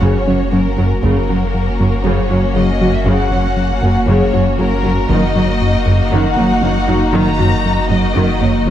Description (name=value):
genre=cinematic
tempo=118 BPM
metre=4/4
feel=straight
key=unclear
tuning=A4 = 439 Hz
part: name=warm symphonic violin section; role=melody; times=0.0-8.7 s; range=Bb4 to Bb5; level=-22 LUFS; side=left 3 dB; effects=none
part: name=warm symphonic violin section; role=second line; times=0.0-8.7 s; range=Db4 to Gb4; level=-22 LUFS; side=left 2 dB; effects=none
part: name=rich symphonic viola section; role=accompaniment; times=0.0-8.7 s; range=Db3 to Bb3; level=-21 LUFS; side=equal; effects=none
part: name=harp-like synth pluck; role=arpeggios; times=0.0-8.7 s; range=Eb3 to Gb4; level=-21 LUFS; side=right 3 dB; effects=chorus
part: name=fat analog bass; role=riff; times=0.0-8.7 s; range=Gb2 to Gb3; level=-18 LUFS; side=left 2 dB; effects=none
part: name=punchy sub bass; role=bass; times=0.0-8.7 s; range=Gb1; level=-20 LUFS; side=equal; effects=none
part: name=rich symphonic cello section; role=bass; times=0.0-8.7 s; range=Gb2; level=-21 LUFS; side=right 2 dB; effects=none
part: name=rich symphonic double bass section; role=bass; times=0.0-8.7 s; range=Gb1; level=-22 LUFS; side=right 3 dB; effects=none
room=moderate scoring stage reverb, RT60 1.7 s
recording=dark, warm production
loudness=-12 LUFS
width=side -11 dB against mid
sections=0.0-8.7 A section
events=none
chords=0.0 Gb; 5.1 Ebm/Gb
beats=0.02 0.53 | 1.04 1.54 2.05 2.56 | 3.07 3.58 4.09 4.59 | 5.10 5.61 6.12 6.63 | 7.14 7.65 8.15 8.66